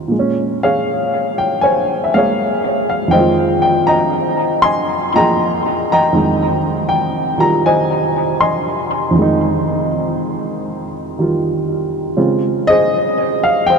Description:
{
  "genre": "solo jazz",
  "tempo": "80 BPM",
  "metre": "4/4",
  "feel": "swing 68% on 8ths",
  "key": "F minor",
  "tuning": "A4 = 440 Hz",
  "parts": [
    { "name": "warm upright piano", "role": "solo", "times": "0.0-13.8 s", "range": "F2 to C6", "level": "-13 LUFS", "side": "equal", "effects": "tape echo" }
  ],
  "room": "wet huge ambient reverb, RT60 6.3 s",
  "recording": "dreamy mix soaked in reverb",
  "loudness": "-13 LUFS",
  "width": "side -5 dB against mid",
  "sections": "0.0-13.8 A section",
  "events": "none",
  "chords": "0.1 Bbm9; 3.1 Fm9; 12.2 Dbmaj7"
}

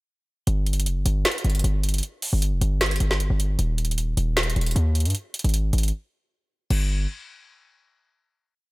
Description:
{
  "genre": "hip hop, trap",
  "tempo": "154 BPM",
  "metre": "4/4",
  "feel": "half-time",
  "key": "unclear",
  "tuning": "A4 = 442 Hz",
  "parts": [
    { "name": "hard-hitting 808-style bass", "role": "bass", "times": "0.5-7.1 s", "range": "Eb1 to G2", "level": "-22 LUFS", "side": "equal", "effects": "none" },
    { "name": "trap drum kit", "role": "drums", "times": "0.5-6.8 s", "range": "crash cymbal, finger snaps, hi-hat, snare drum", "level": "-26 LUFS", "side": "equal", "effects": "none" }
  ],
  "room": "digital ambience",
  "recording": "none",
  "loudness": "-21 LUFS",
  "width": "side -22 dB against mid",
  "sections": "0.5-6.7 hook; 6.7-8.3 final note",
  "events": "break 5.9-6.7",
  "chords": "none"
}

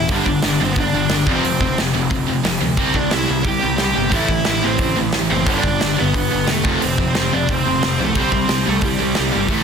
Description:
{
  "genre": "punk rock",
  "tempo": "179 BPM",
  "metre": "4/4",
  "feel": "straight",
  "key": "unclear",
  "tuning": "A4 = 440 Hz",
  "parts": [
    { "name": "lead guitar through a small cranked amp", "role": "melody", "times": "0.0-9.6 s", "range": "G3 to G5", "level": "-21 LUFS", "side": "right 2 dB", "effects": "overdrive, digital delay" },
    { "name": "overdriven electric guitar", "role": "riff", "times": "0.0-9.6 s", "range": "F2 to C4", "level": "-22 LUFS", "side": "left 11 dB", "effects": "none" },
    { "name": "fuzz picked electric bass", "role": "bass", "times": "0.0-9.6 s", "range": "E1 to D2", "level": "-24 LUFS", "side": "equal", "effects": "overdrive" },
    { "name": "tight distorted guitar", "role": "riff", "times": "0.1-9.6 s", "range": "F2 to C4", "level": "-23 LUFS", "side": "right 11 dB", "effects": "distortion" },
    { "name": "big rock drum kit", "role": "drums", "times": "0.1-9.6 s", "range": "hi-hat, kick drum, snare drum", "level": "-21 LUFS", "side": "right 1 dB", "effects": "none" }
  ],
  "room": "light reverb",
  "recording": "dense, heavily limited modern master",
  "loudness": "-15 LUFS",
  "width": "side -6 dB against mid",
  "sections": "0.0-9.6 A section",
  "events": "none",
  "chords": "0.1 G5; 1.3 F5; 2.8 C; 4.1 Am; 5.5 G; 6.7 F; 8.2 C5"
}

